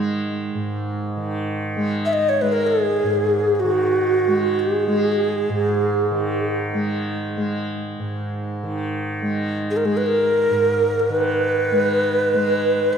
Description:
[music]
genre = world meditative, free-time meditation music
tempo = free time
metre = none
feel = none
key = G# minor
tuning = A4 = 440 Hz
[part]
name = tanpura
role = drone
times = 0.0-13.0 s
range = G#2 to G#3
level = -23 LUFS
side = right 1 dB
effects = none
[part]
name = breathy mellow Native American-style cedar flute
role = melody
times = 2.1-13.0 s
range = F#4 to E5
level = -18 LUFS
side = equal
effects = ping-pong delay
[sound]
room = wet church reverb, RT60 3.6 s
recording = dark, warm production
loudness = -18 LUFS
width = side -7 dB against mid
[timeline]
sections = 0.0-13.0 A section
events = none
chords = none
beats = free time

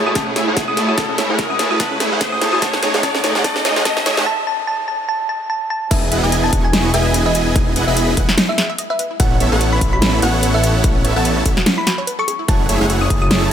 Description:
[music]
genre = future bass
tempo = 146 BPM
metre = 4/4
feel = swing 56% on 16ths, half-time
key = E major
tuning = A4 = 440 Hz
[part]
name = clear studio string section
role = sustained chords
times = 0.0-4.2 s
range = A2 to E4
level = -28 LUFS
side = left 2 dB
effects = sidechain pumping, low-pass filter
[part]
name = supersaw chords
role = riff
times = 0.0-13.5 s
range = A3 to C#6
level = -20 LUFS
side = right 1 dB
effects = sidechain pumping, low-pass filter
[part]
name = wide detuned saw bass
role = bass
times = 0.0-13.5 s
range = E1 to F#2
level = -20 LUFS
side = equal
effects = chorus, sidechain pumping, high-pass filter
[part]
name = riser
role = sound effects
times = 0.0-4.3 s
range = none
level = -24 LUFS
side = left 1 dB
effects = none
[part]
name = thumb-piano-like synth pluck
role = melody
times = 0.1-13.4 s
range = D#5 to D#6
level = -22 LUFS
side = equal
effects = chorus, sidechain pumping, dub echo
[part]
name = wide unison pluck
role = arpeggios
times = 0.1-13.5 s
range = C#4 to E5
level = -27 LUFS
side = right 2 dB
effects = sidechain pumping, tape echo
[part]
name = big-room dance drum kit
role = drums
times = 0.2-13.4 s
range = crash cymbal, hi-hat, snare drum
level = -20 LUFS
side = equal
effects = high-pass filter on snare, high-pass filter on hats, high-pass filter on cymbals, high-pass filter on room
[part]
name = electronic kick drum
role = drums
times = 0.2-13.2 s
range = none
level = -19 LUFS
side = equal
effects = none
[sound]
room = light reverb, digital ambience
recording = high-pass filter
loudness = -14 LUFS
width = side -9 dB against mid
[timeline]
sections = 0.0-5.9 A section; 5.9-13.5 B section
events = build-up 0.0-5.9; drum fill 0.0-4.3; riser 0.0-4.3; filter sweep on synth pluck 0.0-5.9; filter sweep 0.0-5.9; break 4.3-5.9; drop 5.9-13.5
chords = 0.0 F#m9; 2.6 B13; 5.9 Emaj7; 9.2 A69; 12.3 F#m9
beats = 0.16 0.57 | 0.98 1.39 1.80 2.21 | 2.62 3.03 3.44 3.85 | 4.27 4.68 5.09 5.50 | 5.91 6.32 6.73 7.14 | 7.55 7.96 8.38 8.79 | 9.20 9.61 10.02 10.43 | 10.84 11.25 11.66 12.07 | 12.48 12.90 13.31

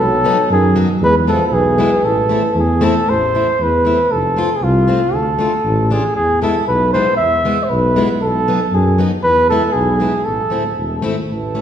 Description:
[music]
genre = alpine folk, alpine dance band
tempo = 117 BPM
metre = 2/4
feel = straight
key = A harmonic minor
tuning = A4 = 439 Hz
[part]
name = mellow flugelhorn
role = melody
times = 0.0-11.6 s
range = F4 to E5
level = -16 LUFS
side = equal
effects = none
[part]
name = warm euphonium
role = second line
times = 0.0-2.8, 11.3-11.6 s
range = D#3 to G#3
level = -20 LUFS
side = right 3 dB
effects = none
[part]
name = dark tuba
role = bass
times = 0.0-11.6 s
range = D1 to F#2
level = -18 LUFS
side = equal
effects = none
[part]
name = picked plugged-in steel-string acoustic guitar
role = accompaniment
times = 0.2-11.6 s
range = F#3 to F4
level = -21 LUFS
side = left 3 dB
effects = none
[sound]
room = wet recital hall reverb, RT60 1.8 s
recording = recorded in a church or concert hall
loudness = -13 LUFS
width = side -9 dB against mid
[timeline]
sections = 0.0-3.1 A section; 3.1-11.3 A section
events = none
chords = 0.0 B7; 1.0 E; 2.0 Am; 4.1 F; 5.1 Dm; 6.2 E; 8.2 B7; 9.2 E; 10.3 Am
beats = 0.50 | 1.01 1.52 | 2.04 2.56 | 3.08 3.60 | 4.11 4.62 | 5.13 5.65 | 6.16 6.68 | 7.19 7.71 | 8.22 8.73 | 9.24 9.74 | 10.26 10.77 | 11.29

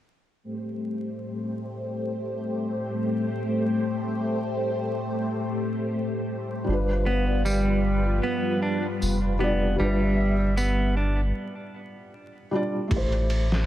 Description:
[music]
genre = trip hop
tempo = 77 BPM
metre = 4/4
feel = swing 55% on 16ths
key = A minor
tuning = A4 = 441 Hz
[part]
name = string machine, cellos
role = sustained chords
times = 0.4-11.3 s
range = G3 to E5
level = -27 LUFS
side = left 1 dB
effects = phaser, ensemble chorus
[part]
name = felt-muted upright piano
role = accompaniment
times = 6.6-13.7 s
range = G3 to D5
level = -29 LUFS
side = equal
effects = tremolo, tape echo
[part]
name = soft dub sub bass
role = bass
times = 6.7-13.7 s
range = F1 to A1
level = -25 LUFS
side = equal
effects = tube saturation
[part]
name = clean electric guitar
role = arpeggios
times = 7.1-11.2 s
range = G3 to D4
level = -27 LUFS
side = right 1 dB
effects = vintage 12-bit sampler grit, tape echo
[part]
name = tambourine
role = percussion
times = 7.5-10.7 s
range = none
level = -37 LUFS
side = left 1 dB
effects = none
[part]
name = trip hop sampler-style drum kit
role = drums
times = 12.9-13.7 s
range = kick drum, ride cymbal, snare drum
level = -28 LUFS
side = equal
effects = none
[sound]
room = light reverb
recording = vinyl crackle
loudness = -24 LUFS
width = side -13 dB against mid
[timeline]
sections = 0.4-12.9 A section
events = break 11.3-12.9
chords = 0.4 Am7; 6.7 G7; 12.9 Am7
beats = | 0.44 1.22 2.00 2.78 | 3.56 4.34 5.12 5.89 | 6.67 7.45 8.23 9.01 | 9.79 10.57 11.35 12.13 | 12.91

